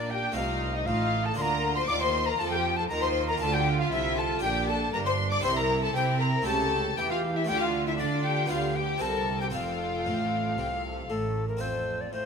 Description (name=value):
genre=classical, baroque-style concerto movement with solo episodes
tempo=118 BPM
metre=4/4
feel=straight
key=Bb major, F major from 3.4 s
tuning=A4 = 438 Hz
part: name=mellow alto recorder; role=melody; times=0.0-12.3 s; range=A4 to D6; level=-31 LUFS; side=left 2 dB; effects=none
part: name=rich symphonic violin section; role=melody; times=0.0-12.3 s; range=A4 to D6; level=-34 LUFS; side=left 2 dB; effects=none
part: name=harpsichord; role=accompaniment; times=0.0-12.3 s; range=F2 to Bb4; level=-37 LUFS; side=right 1 dB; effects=none
part: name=rich chamber viola section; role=accompaniment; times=0.0-12.3 s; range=A3 to Bb4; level=-34 LUFS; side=right 4 dB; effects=none
part: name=rich studio double bass section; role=bass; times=0.0-11.6 s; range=F1 to D3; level=-33 LUFS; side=right 3 dB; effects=none
part: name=warm symphonic cello section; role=bass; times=0.0-12.3 s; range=F2 to D4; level=-34 LUFS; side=right 4 dB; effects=none
part: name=warm chamber violin section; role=second line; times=0.1-12.3 s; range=D4 to D5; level=-32 LUFS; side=left 5 dB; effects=none
room=moderate concert hall reverb, RT60 2.4 s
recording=close, detailed microphones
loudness=-25 LUFS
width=side -6 dB against mid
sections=0.0-11.6 A section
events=none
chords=0.4 F7/C; 1.4 Bb/D; 3.4 Dm; 4.4 Gm/Bb; 5.4 C; 6.5 A7/C#; 7.5 Dm; 8.5 G7/D; 9.0 C7; 9.5 F